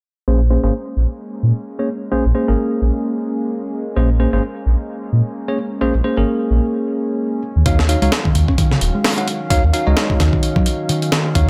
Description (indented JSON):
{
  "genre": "breakbeat, breaks",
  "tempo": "130 BPM",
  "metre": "4/4",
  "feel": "swing 57% on 16ths",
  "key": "Bb minor",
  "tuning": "A4 = 437 Hz",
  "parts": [
    { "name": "warbly tape-like pad", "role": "sustained chords", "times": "0.8-11.5 s", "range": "Eb3 to F5", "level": "-30 LUFS", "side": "equal", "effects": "chorus, built-in reverb, sidechain pumping" },
    { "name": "bell-like tine electric piano", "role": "stabs", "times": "0.3-11.5 s", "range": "Bb3 to Gb5", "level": "-23 LUFS", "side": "equal", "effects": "vintage 12-bit sampler grit, low-pass filter, dub echo" },
    { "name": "dark detuned saw bass", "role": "bass", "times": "0.3-11.5 s", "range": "Eb1 to Bb2", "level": "-18 LUFS", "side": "equal", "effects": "none" },
    { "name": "vintage muted picked electric bass", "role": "riff", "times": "7.7-11.5 s", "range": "Db3 to Db4", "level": "-23 LUFS", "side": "equal", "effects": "none" },
    { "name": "breakbeat sampler-style drum kit", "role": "drums", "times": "7.7-11.5 s", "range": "hi-hat, kick drum, snare drum", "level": "-20 LUFS", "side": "equal", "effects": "none" }
  ],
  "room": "light reverb, digital ambience",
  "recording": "none",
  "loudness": "-18 LUFS",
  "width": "mono",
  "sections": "0.3-11.5 A section",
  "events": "filter sweep on detuned saw bass 0.3-11.5; filter sweep on tine electric piano 0.3-11.5",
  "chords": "0.3 Bbm9; 7.4 Ebm9"
}